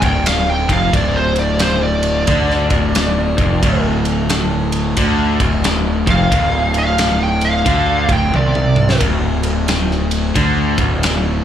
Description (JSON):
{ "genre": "blues rock power trio and southern rock", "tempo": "89 BPM", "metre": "4/4", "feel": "swing 64% on 8ths", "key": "D minor", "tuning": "A4 = 440 Hz", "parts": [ { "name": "lead guitar through a small cranked amp", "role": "melody", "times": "0.0-9.0 s", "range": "C5 to G5", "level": "-19 LUFS", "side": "right 1 dB", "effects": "overdrive, slapback echo" }, { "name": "crunchy overdriven guitar", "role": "riff", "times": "0.0-11.4 s", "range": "D2 to D3", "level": "-19 LUFS", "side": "equal", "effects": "slapback echo" }, { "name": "fuzz picked electric bass", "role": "bass", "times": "0.0-11.4 s", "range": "D1 to D2", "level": "-18 LUFS", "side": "equal", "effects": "overdrive" }, { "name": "big rock drum kit", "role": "drums", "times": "0.0-11.2 s", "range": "kick drum, ride cymbal, snare drum, toms", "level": "-19 LUFS", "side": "equal", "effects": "none" } ], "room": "little or no reverb", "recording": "live gig heard through the venue's PA, club reverb", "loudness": "-13 LUFS", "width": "side -10 dB against mid", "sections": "0.0-11.4 A section", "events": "drum fill 8.3-9.0", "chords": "0.0 Dm", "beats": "0.27 | 0.94 1.61 2.29 2.96 | 3.63 4.30 4.98 5.65 | 6.32 6.99 7.66 8.34 | 9.01 9.68 10.35 11.02" }